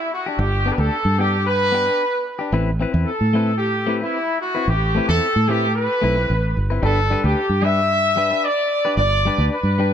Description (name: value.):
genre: highlife guitar band.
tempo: 112 BPM.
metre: 4/4.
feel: straight.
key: G major.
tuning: A4 = 440 Hz.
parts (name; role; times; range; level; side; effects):
warm horn section; melody; 0.0-9.9 s; E4 to E5; -20 LUFS; equal; tape echo.
clean electric guitar; accompaniment; 0.3-9.9 s; G3 to B4; -26 LUFS; left 5 dB; none.
fingered electric bass; bass; 0.4-9.9 s; G1 to A2; -20 LUFS; right 1 dB; none.
room: moderate spring reverb, RT60 2.5 s.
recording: none.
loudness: -17 LUFS.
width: side -9 dB against mid.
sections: 0.0-9.9 A section.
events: none.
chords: 0.0 G; 2.5 Amadd9; 6.8 G.